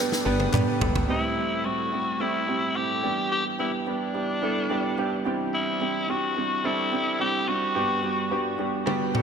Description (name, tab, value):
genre	1980s-style pop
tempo	108 BPM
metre	4/4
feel	straight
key	unclear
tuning	A4 = 437 Hz
part	dark grand piano	accompaniment	0.0-9.2 s	G2 to B5	-26 LUFS	right 2 dB	wide subtle chorus
part	brassy analog pad	sustained chords	0.0-1.1 s	B4 to D6	-41 LUFS	left 2 dB	none
part	big rock drum kit	drums	0.1-1.1, 8.9-9.2 s	snare drum, toms	-27 LUFS	equal	gated reverb
part	woody fretless electric bass	bass	0.3-1.1 s	G1 to G2	-27 LUFS	left 1 dB	none
part	group handclap	percussion	0.5-0.7 s	none	-42 LUFS	left 5 dB	none
part	growling tenor saxophone	melody	1.1-8.6 s	D4 to G4	-27 LUFS	left 2 dB	digital delay
room	moderate lush hall reverb, RT60 2.6 s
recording	bright 1980s-style digital production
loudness	-23 LUFS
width	side -6 dB against mid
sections	0.0-1.1 A section; 1.1-9.2 B section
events	drum fill 0.0-1.1, 8.9-9.2; grand piano fill 0.0-1.1, 8.9-9.2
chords	0.0 G; 1.1 Am7; 3.0 Em7; 5.3 Cadd9/E; 7.8 Gmaj7